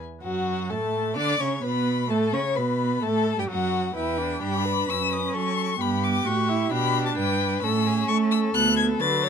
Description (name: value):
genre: quick classical-period movement for string quartet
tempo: 130 BPM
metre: 4/4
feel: rubato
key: unclear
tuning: A4 = 440 Hz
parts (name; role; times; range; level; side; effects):
- rich violin; melody; 0.2-9.3 s; F#5 to A6; -27 LUFS; left 6 dB; none
- warm violin; second line; 0.2-9.3 s; F#4 to D5; -29 LUFS; left 5 dB; none
- warm viola; accompaniment; 0.2-9.3 s; F#3 to F#4; -28 LUFS; right 3 dB; none
- clear cello; bass; 0.2-9.3 s; D2 to A3; -27 LUFS; right 5 dB; none
room: light reverb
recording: close, detailed microphones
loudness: -22 LUFS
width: side -7 dB against mid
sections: 0.2-9.3 A section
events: none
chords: 0.2 F#m; 1.2 Bmadd9; 2.1 F#madd11; 4.0 Em; 4.9 F#madd11; 5.8 Em/G; 7.6 A; 8.5 Bm/D